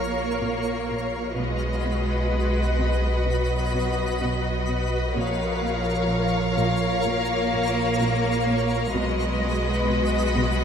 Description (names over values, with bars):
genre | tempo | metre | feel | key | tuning
cinematic | 64 BPM | 4/4 | straight | Bb phrygian | A4 = 442 Hz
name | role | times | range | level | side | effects
rich symphonic violin section | melody | 0.0-10.6 s | Db5 to F5 | -31 LUFS | left 4 dB | none
warm symphonic violin section | second line | 0.0-10.6 s | B4 to Db5 | -30 LUFS | left 3 dB | none
warm symphonic viola section | accompaniment | 0.0-10.6 s | F#4 to Bb4 | -32 LUFS | left 1 dB | none
twinkling granular texture | sustained chords | 0.0-10.6 s | F4 to F5 | -31 LUFS | equal | built-in reverb
warm symphonic cello section | riff | 0.0-10.6 s | Bb2 to B3 | -33 LUFS | right 1 dB | none
rich studio cello section | bass | 0.0-10.6 s | F3 to Bb3 | -29 LUFS | right 2 dB | none
rich symphonic double bass section | bass | 0.0-10.6 s | Bb1 to B1 | -30 LUFS | right 2 dB | none
warm sub bass | drone | 0.0-10.6 s | Bb1 to B1 | -30 LUFS | equal | none
room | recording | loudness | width
moderate scoring stage reverb, RT60 1.6 s | minimal, uncompressed stereo recording | -22 LUFS | side -7 dB against mid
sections
0.0-10.6 A section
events
none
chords
0.0 Bbm; 1.4 B; 5.2 Bbm; 8.9 B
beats
0.43 | 1.38 2.32 3.27 4.21 | 5.16 6.11 7.07 8.01 | 8.95 9.89